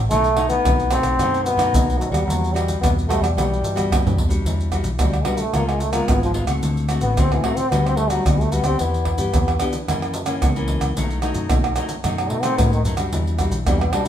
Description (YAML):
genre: samba and choro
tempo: 111 BPM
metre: 4/4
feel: straight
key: E minor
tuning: A4 = 439 Hz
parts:
  - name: vintage muted fingered electric bass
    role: bass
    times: 0.0-13.9 s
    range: G#1 to B2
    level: -23 LUFS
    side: equal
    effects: none
  - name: warm trombone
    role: melody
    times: 0.1-14.1 s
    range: D#3 to D4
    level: -22 LUFS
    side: left 1 dB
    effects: none
  - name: nylon-string guitar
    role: accompaniment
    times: 0.1-14.1 s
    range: F#2 to G4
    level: -26 LUFS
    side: left 3 dB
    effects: none
  - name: maracas, surdo, pandeiro and tamborim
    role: percussion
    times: 0.1-14.1 s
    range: none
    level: -22 LUFS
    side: right 1 dB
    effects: none
room: wet large studio reverb, RT60 1.1 s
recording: band playing live in one room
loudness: -17 LUFS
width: side -10 dB against mid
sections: 0.0-4.5 A section; 4.5-14.1 B section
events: drum fill 3.8-4.5; trombone solo 4.5-14.1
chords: 0.1 B7; 2.3 Em9; 5.5 C#7; 6.6 D7; 7.7 Gmaj7/D; 8.8 Em7; 9.9 F#7; 11.0 B7; 13.1 Em9